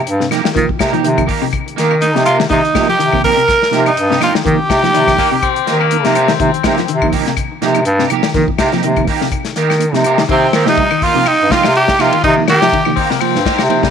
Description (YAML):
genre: afrobeat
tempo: 123 BPM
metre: 4/4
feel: swing 56% on 16ths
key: C minor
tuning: A4 = 440 Hz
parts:
  - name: clear bass clarinet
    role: bass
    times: 0.1-13.9 s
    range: G2 to Eb3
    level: -15 LUFS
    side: equal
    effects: none
  - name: warm soul drum kit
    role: drums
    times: 0.1-13.9 s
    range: hi-hat, kick drum, ride cymbal, snare drum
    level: -20 LUFS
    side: left 4 dB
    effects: none
  - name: semi-hollow electric guitar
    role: arpeggios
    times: 0.2-13.9 s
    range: C3 to G3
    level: -22 LUFS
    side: left 11 dB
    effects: lush chorus, tape echo
  - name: tonewheel organ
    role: accompaniment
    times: 0.3-13.8 s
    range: C3 to F4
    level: -21 LUFS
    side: right 13 dB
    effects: chorus vibrato, fast rotary speaker
  - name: electric guitar at the edge of break-up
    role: stabs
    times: 0.3-13.9 s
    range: Bb3 to G4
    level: -21 LUFS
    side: right 11 dB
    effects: ensemble chorus
  - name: claves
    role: percussion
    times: 0.3-13.7 s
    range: none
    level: -26 LUFS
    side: left 15 dB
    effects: none
  - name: raspy tenor saxophone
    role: melody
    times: 2.0-5.9, 10.3-12.9 s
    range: C4 to Bb4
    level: -14 LUFS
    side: equal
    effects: none
  - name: raspy alto saxophone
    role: second line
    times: 2.0-5.9, 10.3-12.9 s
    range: C4 to Bb4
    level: -21 LUFS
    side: right 10 dB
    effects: none
  - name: clear baritone saxophone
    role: second line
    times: 4.9-7.1, 13.0-13.9 s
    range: G3 to C4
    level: -18 LUFS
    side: left 11 dB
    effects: none
room: moderate echo chamber reverb, RT60 1.7 s, studio ambience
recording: 1960s-style stereo with parts hard left and right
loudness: -11 LUFS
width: side -7 dB against mid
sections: 0.0-10.3 A section; 10.3-13.9 B section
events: none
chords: 0.0 Cm7